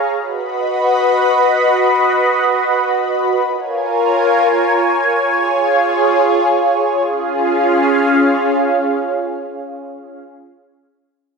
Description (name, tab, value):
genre	dream pop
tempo	free time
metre	none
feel	none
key	Db mixolydian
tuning	A4 = 440 Hz
part	lush unison pad	sustained chords	0.0-10.2 s	Db4 to Cb6	-13 LUFS	equal	chorus, phaser
room	moderate spring reverb, RT60 1.3 s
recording	echo-heavy mix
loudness	-13 LUFS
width	side -4 dB against mid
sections	0.0-7.0 A section; 7.0-10.9 B section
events	slowing down 0.1-7.0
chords	0.1 Cb; 3.5 Bbm7; 5.2 Db